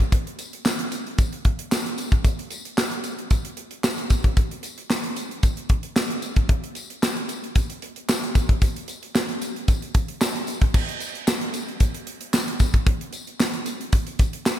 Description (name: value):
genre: funk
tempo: 113 BPM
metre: 4/4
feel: straight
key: none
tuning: none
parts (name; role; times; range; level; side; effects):
- modern studio drum kit; drums; 0.0-14.6 s; crash cymbal, handclaps, hi-hat, kick drum, snare drum; -21 LUFS; equal; none
- tambourine; percussion; 0.4-14.6 s; none; -36 LUFS; left 4 dB; none
room: light reverb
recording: none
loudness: -21 LUFS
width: side -12 dB against mid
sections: 0.0-10.7 A section; 10.7-14.6 B section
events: none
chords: none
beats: | 0.12 0.65 1.18 1.72 | 2.25 2.78 3.31 3.84 | 4.37 4.90 5.43 5.96 | 6.49 7.03 7.56 8.09 | 8.62 9.15 9.68 10.21 | 10.74 11.27 11.80 12.34 | 12.87 13.40 13.93 14.46